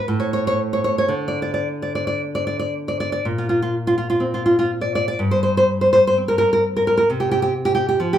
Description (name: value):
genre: romantic piece for solo classical guitar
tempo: 54-66 BPM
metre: 2/4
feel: rubato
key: unclear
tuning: A4 = 437 Hz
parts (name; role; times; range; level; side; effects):
- nylon-string guitar; solo; 0.0-8.2 s; G2 to D5; -17 LUFS; equal; none
room: moderate large studio reverb, RT60 1.1 s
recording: band playing live in one room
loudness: -17 LUFS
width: side -10 dB against mid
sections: 0.0-3.3 A section; 3.3-8.2 B section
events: none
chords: 0.0 N.C.; 3.3 Bbadd9; 5.2 Gmadd11; 7.1 N.C.